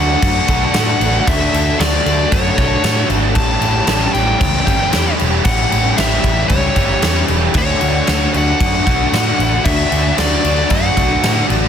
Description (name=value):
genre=rock, shoegaze and dream pop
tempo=115 BPM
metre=4/4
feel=straight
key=D major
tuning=A4 = 440 Hz
part: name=nasal lead guitar with a parked wah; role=melody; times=0.0-11.5 s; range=C#5 to A5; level=-19 LUFS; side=left 2 dB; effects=overdrive
part: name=overdriven electric guitar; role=riff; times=0.0-11.7 s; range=A2 to A4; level=-21 LUFS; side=left 10 dB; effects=ensemble chorus
part: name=overdriven electric guitar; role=riff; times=0.0-11.7 s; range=A2 to G4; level=-20 LUFS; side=right 12 dB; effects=reverse reverb
part: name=picked electric bass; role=bass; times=0.0-11.7 s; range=E1 to A2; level=-19 LUFS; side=equal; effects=none
part: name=huge arena drum kit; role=drums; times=0.2-11.6 s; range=crash cymbal, kick drum, snare drum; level=-17 LUFS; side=equal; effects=none
room=light reverb, studio reverb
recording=dense, heavily limited modern master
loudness=-12 LUFS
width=side -8 dB against mid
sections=0.0-11.7 A section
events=none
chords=0.0 Dmaj7; 3.4 A7; 7.5 D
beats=0.22 0.74 | 1.27 1.79 2.31 2.84 | 3.36 3.88 4.41 4.93 | 5.45 5.98 6.50 7.03 | 7.55 8.07 8.60 9.12 | 9.65 10.17 10.70 11.23